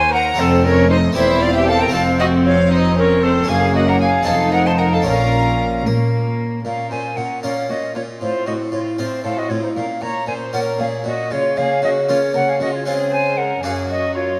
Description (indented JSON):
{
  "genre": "classical, baroque-style concerto movement with solo episodes",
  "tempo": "77 BPM (dotted quarters)",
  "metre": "6/8",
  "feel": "straight",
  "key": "Bb minor",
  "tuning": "A4 = 440 Hz",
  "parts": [
    { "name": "silver concert flute", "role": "melody", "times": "0.0-14.4 s", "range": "A4 to Bb5", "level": "-22 LUFS", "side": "equal", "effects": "none" },
    { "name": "warm chamber violin section", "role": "second line", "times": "0.0-14.4 s", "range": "C4 to Db5", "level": "-26 LUFS", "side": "equal", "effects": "none" },
    { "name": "harpsichord", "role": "accompaniment", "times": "0.0-14.4 s", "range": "Eb2 to G4", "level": "-25 LUFS", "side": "equal", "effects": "none" },
    { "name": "warm chamber viola section", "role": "accompaniment", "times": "0.0-14.4 s", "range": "Gb3 to Eb4", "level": "-29 LUFS", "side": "equal", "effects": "none" },
    { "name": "dark chamber cello section", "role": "bass", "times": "0.0-14.4 s", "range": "Eb2 to Bb3", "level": "-24 LUFS", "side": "equal", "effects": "none" },
    { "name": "rich chamber double bass section", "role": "bass", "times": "0.0-6.6 s", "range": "E1 to Bb2", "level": "-24 LUFS", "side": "equal", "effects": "none" },
    { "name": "rich chamber violin section", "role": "melody", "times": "0.1-14.4 s", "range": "Bb3 to C6", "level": "-32 LUFS", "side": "equal", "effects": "none" }
  ],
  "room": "wet recital hall reverb, RT60 1.5 s",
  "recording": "none",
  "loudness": "-18 LUFS",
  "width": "mono",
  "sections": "0.0-6.6 A section; 6.6-14.4 B section",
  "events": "none",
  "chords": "0.4 F; 1.2 C7/E; 1.9 F; 3.5 Gb; 4.3 F5; 5.1 Bbm; 8.2 F/A; 9.8 Bbm; 11.3 Bbm/Db; 12.9 Dbmaj7; 13.6 Gb"
}